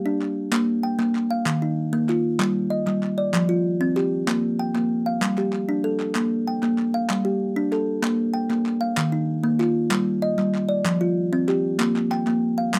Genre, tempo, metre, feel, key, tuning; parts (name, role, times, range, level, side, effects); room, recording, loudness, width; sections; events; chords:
southern african traditional, mbira-style interlocking cycle; 128 BPM (dotted quarters); 12/8; straight; Bb major; A4 = 440 Hz
kalimba; arpeggios; 0.0-12.8 s; Eb3 to G5; -23 LUFS; equal
group handclap; percussion; 0.2-12.8 s; -32 LUFS; equal
light reverb; close, detailed microphones; -23 LUFS; mono
0.0-6.2 A section; 6.2-12.8 B section
0.0 G5; 0.5 Bb5; 1.5 Eb5; 2.4 G5; 3.3 F5; 4.3 Bb5; 5.2 G5; 6.2 Bb5; 7.1 G5; 8.0 Bb5; 9.0 Eb5; 9.9 G5; 10.9 F5; 11.8 Bb5